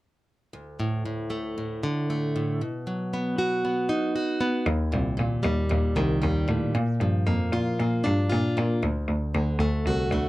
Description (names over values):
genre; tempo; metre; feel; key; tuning
rock; 116 BPM; 4/4; straight; unclear; A4 = 440 Hz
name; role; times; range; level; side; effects
picked plugged-in steel-string acoustic guitar; arpeggios; 0.5-10.3 s; D2 to F#4; -26 LUFS; equal; none
bright cello; bass; 4.7-10.3 s; C2 to Bb2; -24 LUFS; equal; none
room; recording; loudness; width
little or no reverb; none; -23 LUFS; side -17 dB against mid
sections
0.5-8.8 A section; 8.8-10.3 B section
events
none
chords
0.5 D5; 2.6 B; 4.7 Eb; 6.8 Bb; 8.8 D